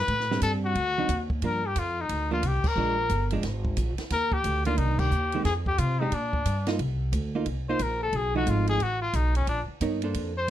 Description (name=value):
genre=jazz, small-group swing and bop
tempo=179 BPM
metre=4/4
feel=swing 63% on 8ths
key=C dorian from 6.8 s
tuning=A4 = 439 Hz
part: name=clear trumpet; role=melody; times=0.0-10.5 s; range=Db4 to C5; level=-28 LUFS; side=left 3 dB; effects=none
part: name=upright bass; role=bass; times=0.0-10.5 s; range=G1 to C3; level=-28 LUFS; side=equal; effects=none
part: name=compact cocktail drum kit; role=drums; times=0.1-10.2 s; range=crash cymbal, hi-hat, kick drum, ride cymbal, snare drum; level=-34 LUFS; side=right 1 dB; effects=none
part: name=hollow-body jazz guitar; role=accompaniment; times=0.3-10.3 s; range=D3 to Db5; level=-30 LUFS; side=right 4 dB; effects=none
room=light reverb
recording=dark, warm production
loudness=-24 LUFS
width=side -12 dB against mid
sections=0.0-6.8 A section; 6.8-10.5 B section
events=band accent 2.6, 4.9; trumpet solo 6.8-10.5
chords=0.1 Am11; 0.8 D7b9; 1.4 Gm7; 2.8 Bb7; 4.1 Ebmaj7; 4.8 Cm9; 5.4 Fm; 6.1 Bb6; 6.8 Cm11; 8.1 B7#11; 9.5 Bbmaj9